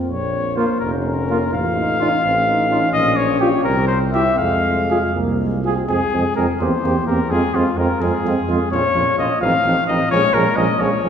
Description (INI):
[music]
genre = classical, brass quintet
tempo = 79-87 BPM (dotted quarters)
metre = 6/8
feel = rubato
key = F minor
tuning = A4 = 440 Hz
[part]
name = mellow French horn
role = accompaniment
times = 0.0-11.1 s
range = Ab3 to F4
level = -24 LUFS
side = equal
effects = none
[part]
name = warm cornet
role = melody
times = 0.1-11.1 s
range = F4 to F5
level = -19 LUFS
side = left 3 dB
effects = none
[part]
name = warm tuba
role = bass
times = 0.1-11.1 s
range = F1 to F2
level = -22 LUFS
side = right 2 dB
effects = none
[part]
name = mellow trumpet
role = second line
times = 0.6-11.1 s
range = Db4 to Ab4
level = -26 LUFS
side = right 5 dB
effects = none
[part]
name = clear trombone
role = accompaniment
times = 0.8-11.1 s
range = F3 to F4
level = -25 LUFS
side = right 1 dB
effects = none
[sound]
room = wet concert hall reverb, RT60 2.3 s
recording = heard from further back in the room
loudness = -15 LUFS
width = side -8 dB against mid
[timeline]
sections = 0.0-5.9 A section; 5.9-11.1 B section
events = none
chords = 0.1 Bbm; 1.5 F7/A; 2.9 Gdim/Bb (rootless); 3.6 C; 4.4 Fm; 6.6 C7/E; 7.3 Fm; 8.7 Bbm; 9.4 F7/A; 10.1 Bbm7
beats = | 0.09 0.81 | 1.54 2.25 | 2.94 3.65 | 4.39 5.15 | 5.90 6.61 | 7.31 8.01 | 8.71 9.41 | 10.11 10.81